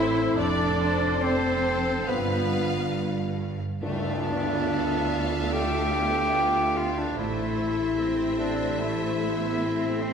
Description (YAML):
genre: cinematic, emotional film score for orchestra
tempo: 68-74 BPM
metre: 4/4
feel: rubato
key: D dorian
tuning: A4 = 440 Hz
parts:
  - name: clear symphonic violin section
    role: melody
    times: 0.0-10.1 s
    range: A4 to F5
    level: -36 LUFS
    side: left 2 dB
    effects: none
  - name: warm duduk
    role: melody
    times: 0.0-3.0 s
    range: B3 to E4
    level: -31 LUFS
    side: left 2 dB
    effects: none
  - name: clear oboe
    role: second line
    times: 0.0-3.0 s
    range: B4 to E5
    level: -33 LUFS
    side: right 1 dB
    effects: none
  - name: clear symphonic violin section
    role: second line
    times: 0.0-10.1 s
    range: B4 to E5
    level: -36 LUFS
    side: left 2 dB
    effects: none
  - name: silver concert flute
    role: second line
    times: 0.0-10.1 s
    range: B4 to G5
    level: -31 LUFS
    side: right 2 dB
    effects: none
  - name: warm symphonic viola section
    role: accompaniment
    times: 0.0-10.1 s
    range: A3 to E4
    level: -33 LUFS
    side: right 1 dB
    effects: none
  - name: mellow French horn section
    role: sustained chords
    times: 0.0-10.1 s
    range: C3 to A4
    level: -32 LUFS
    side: left 1 dB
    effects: none
  - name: clear symphonic cello section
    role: bass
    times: 0.0-10.1 s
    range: F2 to C4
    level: -33 LUFS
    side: right 2 dB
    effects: none
  - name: clear symphonic double bass section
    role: bass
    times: 0.0-10.1 s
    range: F1 to D2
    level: -33 LUFS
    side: right 2 dB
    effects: none
  - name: bright clarinet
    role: second line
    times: 3.8-10.1 s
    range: C4 to G4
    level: -28 LUFS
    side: left 1 dB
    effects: none
  - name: tam-tam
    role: percussion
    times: 3.8-7.1 s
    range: none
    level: -36 LUFS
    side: left 1 dB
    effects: none
room: wet concert hall reverb, RT60 2.0 s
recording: recorded in a church or concert hall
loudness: -23 LUFS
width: side -7 dB against mid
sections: 0.0-3.8 A section; 3.8-10.1 B section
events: band accent 3.8-4.6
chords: 0.4 F; 2.1 G7; 3.8 Dmadd9; 7.2 Am